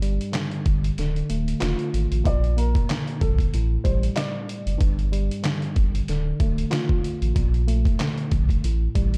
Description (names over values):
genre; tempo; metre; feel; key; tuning
hip hop, boom-bap hip-hop; 94 BPM; 4/4; swing 55% on 16ths; D minor; A4 = 445 Hz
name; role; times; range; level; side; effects
tine electric piano; accompaniment; 0.0-9.2 s; G2 to D5; -30 LUFS; equal; overdrive, cassette tape, high-pass filter, low-pass filter
saturated sub bass; bass; 0.0-9.2 s; D1 to Bb1; -26 LUFS; equal; none
trip hop sampler-style drum kit; drums; 0.0-9.2 s; handclaps, hi-hat, kick drum, snare drum; -27 LUFS; equal; none
dark upright piano; melody; 2.3-4.5 s; A4 to D5; -34 LUFS; equal; high-pass filter, low-pass filter
room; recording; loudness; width
digital ambience; dark, warm production; -23 LUFS; mono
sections
0.0-2.3 A section; 2.3-9.2 A section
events
kick muted 1.0-2.3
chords
0.0 G5; 1.0 Dm; 2.3 Bb; 3.5 A7sus4; 4.8 G5; 6.1 Dm; 7.4 Bbmaj7; 8.6 A7(no3)